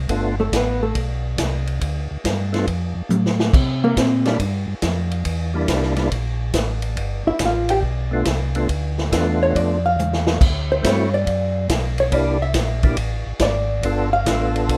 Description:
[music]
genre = soul jazz organ trio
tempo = 140 BPM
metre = 4/4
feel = swing 68% on 8ths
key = G mixolydian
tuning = A4 = 439 Hz
[part]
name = mellow tonewheel organ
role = bass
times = 0.0-14.8 s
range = G1 to C3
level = -25 LUFS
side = equal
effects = slow rotary speaker
[part]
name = percussive tonewheel organ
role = melody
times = 0.1-14.8 s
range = G3 to A4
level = -25 LUFS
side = equal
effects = slow rotary speaker, overdrive, chorus vibrato
[part]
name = swinging big-band drum kit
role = drums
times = 0.1-14.8 s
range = crash cymbal, hi-hat, kick drum, ride cymbal, snare drum, toms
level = -25 LUFS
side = equal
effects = none
[part]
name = vintage hollow-body jazz guitar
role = accompaniment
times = 0.4-1.0, 3.8-4.4, 7.3-14.5 s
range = A3 to G5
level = -23 LUFS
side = equal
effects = none
[sound]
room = light reverb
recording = rough home demo mix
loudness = -20 LUFS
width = mono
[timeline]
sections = 0.0-14.8 A section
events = hollow-body jazz guitar solo 0.0-14.8; drum fill 3.1-3.5, 10.0-10.4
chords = 0.1 G9; 3.5 C9; 7.0 G9; 10.4 D9; 12.1 C9; 13.8 G9

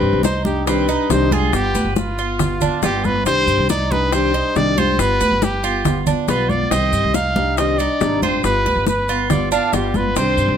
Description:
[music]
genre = latin, Cuban son and guajira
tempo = 139 BPM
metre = 4/4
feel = straight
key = C harmonic minor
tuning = A4 = 440 Hz
[part]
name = warm trumpet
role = melody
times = 0.0-10.6 s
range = F4 to F5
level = -20 LUFS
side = equal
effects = none
[part]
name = fingerpicked plugged-in steel-string acoustic guitar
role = accompaniment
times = 0.0-10.6 s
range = C3 to G4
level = -22 LUFS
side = left 2 dB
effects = none
[part]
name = Cuban tres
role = arpeggios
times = 0.0-10.6 s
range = C4 to B4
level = -24 LUFS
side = right 9 dB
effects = none
[part]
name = upright bass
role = bass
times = 0.0-10.6 s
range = G1 to G2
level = -22 LUFS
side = equal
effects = none
[part]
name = congas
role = percussion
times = 0.0-10.6 s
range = none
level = -23 LUFS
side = equal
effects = none
[part]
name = bongos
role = percussion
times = 0.2-10.4 s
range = none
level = -24 LUFS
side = left 9 dB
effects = none
[part]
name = maracas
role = percussion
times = 0.2-10.6 s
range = none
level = -32 LUFS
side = left 7 dB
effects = none
[sound]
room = moderate studio reverb, RT60 0.7 s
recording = none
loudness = -15 LUFS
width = side -8 dB against mid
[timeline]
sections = 0.0-10.6 A section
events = none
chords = 0.0 Cmadd9; 1.5 G7; 3.3 Cmadd9; 5.0 G7; 6.7 Cmadd9; 8.4 G7

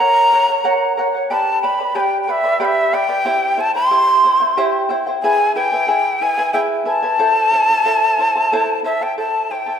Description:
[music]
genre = andean folk, Andean ensemble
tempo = 92 BPM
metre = 3/4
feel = straight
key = A dorian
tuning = A4 = 439 Hz
[part]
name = breathy quena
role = melody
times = 0.0-9.8 s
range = E5 to C6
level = -15 LUFS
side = left 1 dB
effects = slapback echo
[part]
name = charango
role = accompaniment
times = 0.0-9.8 s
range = E4 to B5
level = -19 LUFS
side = right 1 dB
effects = none
[sound]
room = wet scoring stage reverb, RT60 1.8 s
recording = none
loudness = -14 LUFS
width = side -8 dB against mid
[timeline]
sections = 0.0-9.2 A section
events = none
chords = 0.0 F#; 1.3 G; 3.3 C; 5.2 E; 7.2 Am

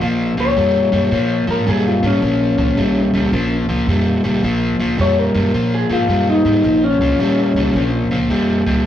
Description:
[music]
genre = electric blues shuffle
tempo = 109 BPM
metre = 4/4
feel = swing 65% on 8ths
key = Bb minor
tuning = A4 = 443 Hz
[part]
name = overdriven semi-hollow guitar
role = riff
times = 0.0-8.8 s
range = Bb2 to G3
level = -17 LUFS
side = equal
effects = none
[part]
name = upright bass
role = bass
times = 0.0-8.8 s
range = Bb1 to Bb2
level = -22 LUFS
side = right 1 dB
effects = none
[part]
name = electric guitar through a small old amp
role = melody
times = 0.4-7.9 s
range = Db4 to Db5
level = -18 LUFS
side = left 2 dB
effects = analog delay
[sound]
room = wet studio ambience, RT60 0.5 s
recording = rough rehearsal-room recording, tube saturation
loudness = -14 LUFS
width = side -11 dB against mid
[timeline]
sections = 0.0-8.9 A section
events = none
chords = 0.0 Bbm

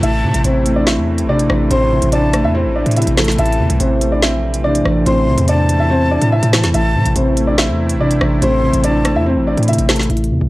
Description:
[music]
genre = hip hop, drill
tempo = 143 BPM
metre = 4/4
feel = half-time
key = A minor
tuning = A4 = 444 Hz
[part]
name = dark baby grand piano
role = melody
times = 0.0-10.5 s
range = A3 to E5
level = -18 LUFS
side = equal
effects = low-pass filter, analog delay
[part]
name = breathy mellow silver concert flute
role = second line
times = 0.0-9.2 s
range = A5 to C6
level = -23 LUFS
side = left 2 dB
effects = analog delay
[part]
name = felt-muted upright piano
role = accompaniment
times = 0.0-10.5 s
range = A2 to C4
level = -19 LUFS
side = right 1 dB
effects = low-pass filter
[part]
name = sweeping resonant pad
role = sustained chords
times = 0.0-10.5 s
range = C3 to E4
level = -23 LUFS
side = equal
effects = chorus, low-pass filter
[part]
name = hard-hitting 808-style bass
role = bass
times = 0.0-10.5 s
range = A1 to A2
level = -17 LUFS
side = equal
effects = transformer saturation
[part]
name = drill drum kit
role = drums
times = 0.0-10.3 s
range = hi-hat, rim click, snare drum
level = -19 LUFS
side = equal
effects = none
[sound]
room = small room ambience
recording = dry, gritty hardware recording, cassette tape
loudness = -12 LUFS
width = side -18 dB against mid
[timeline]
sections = 0.0-10.1 A section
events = none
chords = 0.0 Am

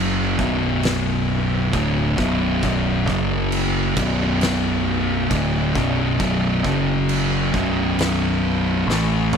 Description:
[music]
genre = stoner and doom metal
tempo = 67 BPM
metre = 4/4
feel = straight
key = B minor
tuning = A4 = 440 Hz
[part]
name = thick fuzz guitar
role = riff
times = 0.0-9.4 s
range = B1 to A3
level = -22 LUFS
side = left 12 dB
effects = distortion
[part]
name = thick fuzz guitar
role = riff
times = 0.0-9.4 s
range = B1 to A3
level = -22 LUFS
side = right 8 dB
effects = distortion
[part]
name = growling picked electric bass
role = bass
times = 0.0-9.4 s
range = B0 to A1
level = -26 LUFS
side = equal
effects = overdrive
[part]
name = oversized low-tuned drum kit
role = drums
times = 0.4-9.4 s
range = crash cymbal, kick drum, snare drum, toms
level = -26 LUFS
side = equal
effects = none
[sound]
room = little or no reverb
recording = none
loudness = -18 LUFS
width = side -6 dB against mid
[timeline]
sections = 0.0-9.4 A section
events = drum fill 8.9-9.4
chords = 0.4 Bm; 3.1 F#5; 4.0 Bm; 6.6 F#5; 7.5 B5

